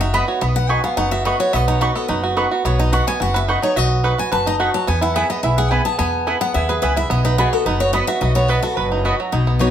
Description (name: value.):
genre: bluegrass.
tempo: 215 BPM.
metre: 4/4.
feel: straight.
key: B major.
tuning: A4 = 440 Hz.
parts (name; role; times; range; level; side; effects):
picked steel-string acoustic guitar; accompaniment; 0.0-9.7 s; B2 to A5; -22 LUFS; left 4 dB; none.
bluegrass banjo; arpeggios; 0.0-9.7 s; F#3 to B4; -21 LUFS; right 4 dB; none.
upright bass; bass; 0.0-9.7 s; F#1 to E2; -20 LUFS; equal; none.
mandolin; stabs; 0.1-9.7 s; B3 to C#6; -23 LUFS; right 2 dB; tape echo.
room: moderate large studio reverb, RT60 0.9 s.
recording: none.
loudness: -16 LUFS.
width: side -9 dB against mid.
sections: 0.4-9.3 A section.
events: steel-string acoustic guitar solo 0.0-9.3.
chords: 0.4 Badd9; 4.9 E; 7.1 B.